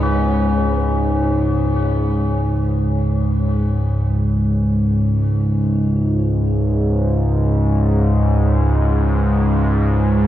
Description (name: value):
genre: ambient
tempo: free time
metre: none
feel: none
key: unclear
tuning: A4 = 440 Hz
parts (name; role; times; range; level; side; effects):
- granular cloud pad; sustained chords; 0.0-10.3 s; G#3 to C#5; -35 LUFS; equal; none
- tubular bells; arpeggios; 0.0-10.3 s; C#4 to F#4; -28 LUFS; left 2 dB; tape echo
- analog drone; drone; 0.0-10.3 s; C#2 to G#2; -15 LUFS; equal; chorus
room: moderate huge ambient reverb, RT60 8.9 s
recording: dark, warm production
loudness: -15 LUFS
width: side -12 dB against mid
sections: 0.0-10.3 A section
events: none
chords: 0.0 C#5